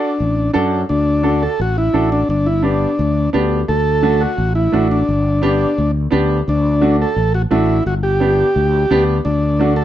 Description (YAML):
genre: latin, cumbia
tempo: 172 BPM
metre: 4/4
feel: straight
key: D major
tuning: A4 = 438 Hz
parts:
  - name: combo organ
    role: melody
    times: 0.0-9.8 s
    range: D4 to A4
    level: -17 LUFS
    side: equal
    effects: none
  - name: warm upright piano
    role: accompaniment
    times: 0.0-9.8 s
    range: A3 to A4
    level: -18 LUFS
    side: right 2 dB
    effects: none
  - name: sustaining fretless electric bass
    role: bass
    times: 0.2-9.8 s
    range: G1 to F#2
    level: -18 LUFS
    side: left 1 dB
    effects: lush chorus
room: light reverb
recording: dark, warm production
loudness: -13 LUFS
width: side -12 dB against mid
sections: 0.9-9.8 A section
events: none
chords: 0.0 D; 2.3 G; 3.7 D; 5.1 G; 6.5 D; 7.9 G; 9.3 D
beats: 0.20 0.55 | 0.90 1.25 1.60 1.95 | 2.29 2.64 2.99 3.34 | 3.69 4.04 4.38 4.73 | 5.08 5.43 5.78 6.12 | 6.47 6.82 7.17 7.52 | 7.86 8.21 8.56 8.91 | 9.26 9.60